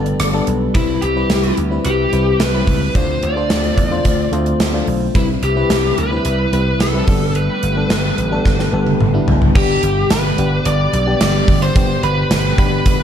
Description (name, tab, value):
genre	1980s-style pop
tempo	109 BPM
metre	4/4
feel	straight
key	unclear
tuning	A4 = 440 Hz
part	FM electric piano	accompaniment	0.0-13.0 s	G3 to C5	-21 LUFS	left 2 dB	chorus
part	brassy analog pad	sustained chords	0.0-13.0 s	B2 to B4	-26 LUFS	right 2 dB	chorus, tremolo
part	vintage slap bass	bass	0.0-13.0 s	F#1 to E2	-19 LUFS	right 1 dB	none
part	gated 80s drum kit	drums	0.1-13.0 s	crash cymbal, hi-hat, kick drum, rim click, snare drum, tambourine, toms	-17 LUFS	right 1 dB	none
part	lead guitar through a small cranked amp	melody	0.8-13.0 s	E4 to D5	-20 LUFS	left 3 dB	overdrive, tape echo
part	soft synth bell	second line	9.6-13.0 s	G5 to D6	-27 LUFS	right 1 dB	chorus, phaser, tape echo
room	light reverb, small room reverb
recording	dark, warm production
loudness	-13 LUFS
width	side -9 dB against mid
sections	0.0-9.6 A section; 9.6-13.0 B section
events	drum fill 8.5-9.6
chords	0.0 Gadd9; 0.7 Cmaj7; 3.0 Dm7; 5.2 Cmaj7; 7.1 Gadd9; 9.6 G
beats	0.20 | 0.75 1.30 1.85 2.40 | 2.95 3.50 4.05 4.60 | 5.15 5.70 6.25 6.80 | 7.35 7.90 8.46 9.01 | 9.56 10.11 10.66 11.21 | 11.76 12.31 12.86